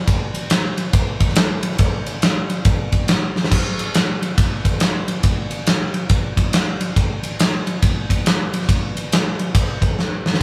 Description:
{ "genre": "rock", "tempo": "139 BPM", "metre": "4/4", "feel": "swing 63% on 8ths", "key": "none", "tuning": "none", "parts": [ { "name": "big rock drum kit", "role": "drums", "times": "0.1-10.4 s", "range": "crash cymbal, kick drum, ride cymbal, snare drum", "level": "-19 LUFS", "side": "equal", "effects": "none" } ], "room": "light reverb", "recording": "band playing live in one room", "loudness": "-19 LUFS", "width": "mono", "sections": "0.0-3.5 A section; 3.5-10.4 A section", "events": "drum fill 3.3, 10.0-10.4", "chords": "none", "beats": "| 0.08 0.51 0.94 1.37 | 1.80 2.23 2.66 3.09 | 3.52 3.95 4.38 4.81 | 5.24 5.67 6.10 6.53 | 6.96 7.40 7.83 8.26 | 8.69 9.12 9.55 9.98 | 10.41" }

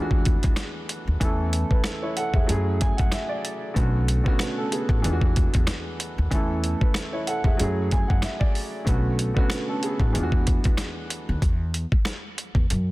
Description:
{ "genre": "hip hop, boom-bap hip-hop", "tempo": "94 BPM", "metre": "4/4", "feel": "swing 56% on 16ths", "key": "unclear", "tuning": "A4 = 436 Hz", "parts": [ { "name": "dark baby grand piano", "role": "accompaniment", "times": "0.0-11.4 s", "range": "D3 to G#5", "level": "-27 LUFS", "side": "right 1 dB", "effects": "cassette tape, high-pass filter, low-pass filter" }, { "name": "upright bass", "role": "bass", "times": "0.0-12.9 s", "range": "A1 to F#2", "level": "-26 LUFS", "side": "equal", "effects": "none" }, { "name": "dusty soul sampler-style drum kit", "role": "drums", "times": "0.1-12.9 s", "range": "hi-hat, kick drum, rim click, snare drum", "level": "-23 LUFS", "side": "equal", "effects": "none" } ], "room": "small room ambience", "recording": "dense, heavily limited modern master", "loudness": "-21 LUFS", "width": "side -19 dB against mid", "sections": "0.0-12.9 A section", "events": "none", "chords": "0.0 E7; 1.2 A/E; 2.5 F#m7; 3.8 Bm7; 5.0 E7; 6.3 A/E; 7.6 F#m7; 8.9 Bm7; 10.1 E7; 11.4 N.C.", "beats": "0.57 | 1.21 1.85 2.49 3.12 | 3.76 4.40 5.04 5.68 | 6.32 6.95 7.59 8.23 | 8.87 9.51 10.14 10.78 | 11.42 12.06 12.70" }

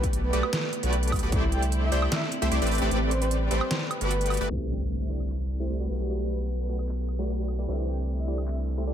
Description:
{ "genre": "future bass", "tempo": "151 BPM", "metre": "4/4", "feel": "half-time", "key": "C lydian", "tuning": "A4 = 440 Hz", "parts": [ { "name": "breathy flute-like synth lead", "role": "melody", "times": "0.0-8.6 s", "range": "B4 to G5", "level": "-36 LUFS", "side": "right 1 dB", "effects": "chorus, sidechain pumping, analog delay" }, { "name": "dark studio string section", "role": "sustained chords", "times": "0.0-8.9 s", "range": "D3 to B4", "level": "-36 LUFS", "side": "equal", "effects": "vintage 12-bit sampler grit, sidechain pumping" }, { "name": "supersaw stab", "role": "riff", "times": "0.0-8.9 s", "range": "A3 to G5", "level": "-31 LUFS", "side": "equal", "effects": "sidechain pumping, low-pass filter, tape echo" }, { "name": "saturated sub bass", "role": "bass", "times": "0.0-8.9 s", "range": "G1 to C2", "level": "-27 LUFS", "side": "equal", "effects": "sidechain pumping" }, { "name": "dubstep drum kit", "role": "drums", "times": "0.0-8.9 s", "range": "crash cymbal, handclaps, hi-hat, snare drum, woodblock", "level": "-32 LUFS", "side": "right 1 dB", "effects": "none" }, { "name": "electronic kick drum", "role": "drums", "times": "0.0-1.4 s", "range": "none", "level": "-28 LUFS", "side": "equal", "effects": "none" }, { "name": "bright concert grand piano", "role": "accompaniment", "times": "4.5-8.9 s", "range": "E3 to F#5", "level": "-42 LUFS", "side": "right 2 dB", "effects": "none" }, { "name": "impact", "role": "sound effects", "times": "4.5-6.1 s", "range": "none", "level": "-39 LUFS", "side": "left 1 dB", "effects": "none" } ], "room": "moderate lush hall reverb, RT60 1.9 s, digital ambience", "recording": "dreamy mix soaked in reverb, low-pass filter", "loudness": "-25 LUFS", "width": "side -9 dB against mid", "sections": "0.0-4.5 A section; 4.5-8.9 B section", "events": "drop 0.0-4.5; kick drops out 2.9-4.5; impact 4.5-6.1; filter sweep 4.5-8.9", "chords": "0.0 Gmaj9/B; 1.3 C69; 2.7 Am11; 3.7 Gmaj9; 4.5 C69; 5.9 Gmaj9/B; 7.7 C69", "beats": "0.13 0.53 0.93 | 1.32 1.72 2.12 2.52 | 2.91 3.31 3.71 4.11 | 4.50 4.90 5.30 5.70 | 6.09 6.49 6.89 7.28 | 7.68 8.08 8.48 8.87" }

